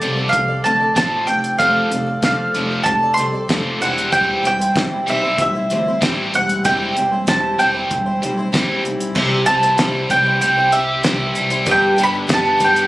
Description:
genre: folk rock and heartland rock.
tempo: 95 BPM.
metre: 4/4.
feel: straight.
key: unclear.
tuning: A4 = 440 Hz.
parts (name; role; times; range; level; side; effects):
bowl-back mandolin; melody; 0.0-12.9 s; D5 to C6; -16 LUFS; right 1 dB; slapback echo.
picked twelve-string acoustic guitar; accompaniment; 0.0-12.9 s; C3 to D5; -24 LUFS; left 2 dB; none.
biting overdriven guitar; riff; 0.0-12.9 s; F2 to G4; -22 LUFS; equal; none.
upright bass; bass; 0.0-12.9 s; E1 to D2; -26 LUFS; equal; none.
cloth-damped thuddy drum kit; drums; 0.0-12.9 s; crash cymbal, hi-hat, kick drum, snare drum; -22 LUFS; equal; none.
room: light reverb.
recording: recorded on a phone in the room, club ambience.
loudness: -14 LUFS.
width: side -17 dB against mid.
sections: 0.0-9.2 A section; 9.2-12.9 B section.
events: none.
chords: 0.0 F6; 3.8 C/E; 9.2 C; 11.7 G.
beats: 0.33 0.97 | 1.60 2.23 2.87 3.50 | 4.13 4.76 5.39 6.03 | 6.66 7.28 7.91 8.54 | 9.17 9.79 10.42 11.04 | 11.67 12.29.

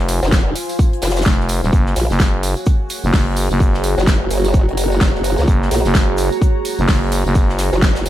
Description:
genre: bass house.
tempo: 128 BPM.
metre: 4/4.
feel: swing 60% on 16ths.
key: unclear.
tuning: A4 = 440 Hz.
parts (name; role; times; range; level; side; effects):
deep dark ambient pad; sustained chords; 0.0-8.1 s; F4 to Ab5; -26 LUFS; right 3 dB; chorus, built-in reverb, sidechain pumping.
growling FM bass; bass; 0.0-7.7 s; Eb1 to Gb1; -18 LUFS; equal; tube saturation, sidechain pumping.
airy breathy pad; texture; 0.0-8.1 s; F4 to Bb5; -26 LUFS; equal; chorus, sidechain pumping.
big-room dance drum kit; drums; 0.1-8.1 s; hi-hat, snare drum; -22 LUFS; equal; overdrive, small room reverb.
modern studio drum kit; drums; 0.1-8.1 s; hi-hat, shaker, snare drum; -31 LUFS; left 1 dB; sidechain pumping on hats, high-pass filter on hats, small room reverb, high-pass filter on snare, sidechain pumping on perc, high-pass filter on perc, high-pass filter on room.
tambourine; percussion; 0.1-8.1 s; none; -32 LUFS; right 4 dB; none.
formant-sweep wobble bass; bass; 0.2-8.1 s; F1 to Db2; -17 LUFS; equal; chorus, overdrive, sidechain pumping.
electronic kick drum; drums; 0.3-7.9 s; none; -15 LUFS; equal; small room reverb.
room: small room ambience.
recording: none.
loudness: -14 LUFS.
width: side -13 dB against mid.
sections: 0.0-8.1 A section.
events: none.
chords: 0.0 Fm; 1.7 Gbadd9.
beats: 0.32 0.79 1.26 | 1.73 2.20 2.67 3.13 | 3.60 4.07 4.54 5.01 | 5.48 5.95 6.42 6.88 | 7.35 7.82.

